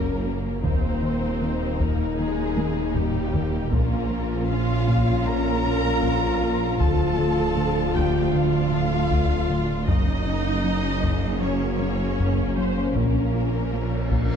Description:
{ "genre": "cinematic, hybrid orchestral and electronic film score", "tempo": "78 BPM", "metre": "4/4", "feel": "straight", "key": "Bb minor", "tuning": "A4 = 440 Hz", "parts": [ { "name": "dark symphonic violin section", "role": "melody", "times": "0.0-14.4 s", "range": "G4 to Bb5", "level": "-32 LUFS", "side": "left 2 dB", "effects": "none" }, { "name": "warm symphonic violin section", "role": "second line", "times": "0.0-14.4 s", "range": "Bb3 to F4", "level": "-33 LUFS", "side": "left 3 dB", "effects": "none" }, { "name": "rich studio viola section", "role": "accompaniment", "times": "0.0-14.4 s", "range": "G3 to C5", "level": "-32 LUFS", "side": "right 3 dB", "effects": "none" }, { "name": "mellow French horn section", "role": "sustained chords", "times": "0.0-14.4 s", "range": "A3 to F4", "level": "-29 LUFS", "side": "left 6 dB", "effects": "none" }, { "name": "warm trombone section", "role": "sustained chords", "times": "0.0-14.4 s", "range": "Bb2 to Bb3", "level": "-34 LUFS", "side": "right 3 dB", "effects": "none" }, { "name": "thumb-piano-like synth pluck", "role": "arpeggios", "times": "0.0-14.3 s", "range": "D3 to F4", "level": "-34 LUFS", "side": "right 6 dB", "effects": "none" }, { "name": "round analog bass", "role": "riff", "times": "0.0-14.3 s", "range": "D2 to Bb3", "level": "-28 LUFS", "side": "left 3 dB", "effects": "none" }, { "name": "clear symphonic cello section", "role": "bass", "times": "0.0-14.4 s", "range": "D2 to Bb2", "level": "-31 LUFS", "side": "right 4 dB", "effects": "none" }, { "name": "clear symphonic double bass section", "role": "bass", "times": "0.0-14.4 s", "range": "Gb1 to Eb2", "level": "-29 LUFS", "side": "right 4 dB", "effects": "none" }, { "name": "swelling detuned saw bass", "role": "bass", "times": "0.0-14.4 s", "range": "D1 to Bb1", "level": "-31 LUFS", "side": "equal", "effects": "none" }, { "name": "taiko ensemble", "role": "drums", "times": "0.6-14.4 s", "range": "none", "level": "-29 LUFS", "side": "equal", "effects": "none" }, { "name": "cymbal swell", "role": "sound effects", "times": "13.6-14.4 s", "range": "none", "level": "-42 LUFS", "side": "left 2 dB", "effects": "none" } ], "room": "moderate scoring stage reverb, RT60 1.7 s", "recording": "dark, warm production", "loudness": "-20 LUFS", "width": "side -7 dB against mid", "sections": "0.0-14.4 A section", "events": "drum fill 2.6-3.7; cymbal swell 13.6-14.4", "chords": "0.0 Gb; 0.7 Eb; 3.7 Bbm; 6.8 Dm; 9.9 Gb; 13.0 Bbm", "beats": "| 0.65 1.42 2.19 2.96 | 3.73 4.50 5.26 6.03 | 6.80 7.57 8.34 9.11 | 9.88 10.65 11.42 12.19 | 12.96 13.73" }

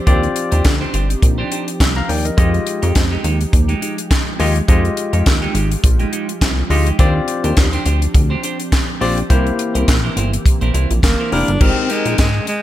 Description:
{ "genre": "early-eighties boogie funk", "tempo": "104 BPM", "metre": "4/4", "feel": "swing 56% on 16ths", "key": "F dorian", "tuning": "A4 = 440 Hz", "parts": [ { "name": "chorused pulse-width pad", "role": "sustained chords", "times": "0.0-12.6 s", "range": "E3 to Bb5", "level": "-28 LUFS", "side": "right 2 dB", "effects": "none" }, { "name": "barky tine electric piano", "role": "accompaniment", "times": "0.1-12.3 s", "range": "Ab3 to Bb5", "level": "-21 LUFS", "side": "left 4 dB", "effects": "overdrive" }, { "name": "clean electric guitar", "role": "riff", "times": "0.1-12.4 s", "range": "Ab3 to C5", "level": "-25 LUFS", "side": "right 4 dB", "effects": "wide subtle chorus" }, { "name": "chorused synth bass", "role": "bass", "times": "0.1-12.4 s", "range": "F1 to Ab2", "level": "-17 LUFS", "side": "equal", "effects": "none" }, { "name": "tight funk drum kit", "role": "drums", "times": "0.1-12.6 s", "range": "crash cymbal, handclaps, hi-hat, kick drum, snare drum", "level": "-16 LUFS", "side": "equal", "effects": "gated reverb" }, { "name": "clear alto saxophone", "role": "melody", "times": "11.0-12.6 s", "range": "Ab3 to D4", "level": "-20 LUFS", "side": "equal", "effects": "slapback echo" } ], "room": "small room ambience", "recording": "none", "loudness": "-14 LUFS", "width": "side -13 dB against mid", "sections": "0.0-11.6 A section; 11.6-12.6 B section", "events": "none", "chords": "0.0 Ebmaj13; 2.4 Fm9; 7.0 Ebmaj13; 9.3 C7; 11.6 Abmaj9", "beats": "| 0.07 0.65 1.22 1.80 | 2.38 2.95 3.53 4.11 | 4.68 5.26 5.84 6.42 | 6.99 7.57 8.15 8.72 | 9.30 9.88 10.45 11.03 | 11.61 12.18" }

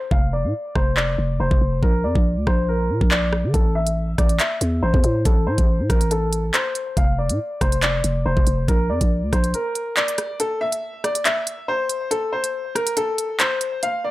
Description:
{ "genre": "hip hop, drill", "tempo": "140 BPM", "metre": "4/4", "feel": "half-time", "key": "unclear", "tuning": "A4 = 440 Hz", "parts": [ { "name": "clear upright piano", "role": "melody", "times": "0.0-14.1 s", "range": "A4 to F5", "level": "-24 LUFS", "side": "left 1 dB", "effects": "low-pass filter" }, { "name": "growling 808-style bass", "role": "bass", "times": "0.1-9.5 s", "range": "F1 to D3", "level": "-22 LUFS", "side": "equal", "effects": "none" }, { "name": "drill drum kit", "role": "drums", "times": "0.1-13.9 s", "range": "handclaps, hi-hat, kick drum, rim click", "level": "-20 LUFS", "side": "equal", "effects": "none" } ], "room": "digital ambience", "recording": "none", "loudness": "-18 LUFS", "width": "side -17 dB against mid", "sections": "0.0-14.1 A section", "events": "break 0.0-3.5, 9.5-10.4; filter sweep on upright piano 0.0-10.4; kick muted 10.4-14.1", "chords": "0.1 F5; 1.8 Bb; 3.5 Am; 7.0 F5; 8.7 Bb; 10.4 N.C.", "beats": "| 0.11 0.54 0.97 1.40 | 1.83 2.25 2.68 3.11 | 3.54 3.97 4.40 4.83 | 5.25 5.68 6.11 6.54 | 6.97 7.40 7.83 8.26 | 8.68 9.11 9.54 9.97 | 10.40 10.83 11.26 11.68 | 12.11 12.54 12.97 13.40 | 13.83" }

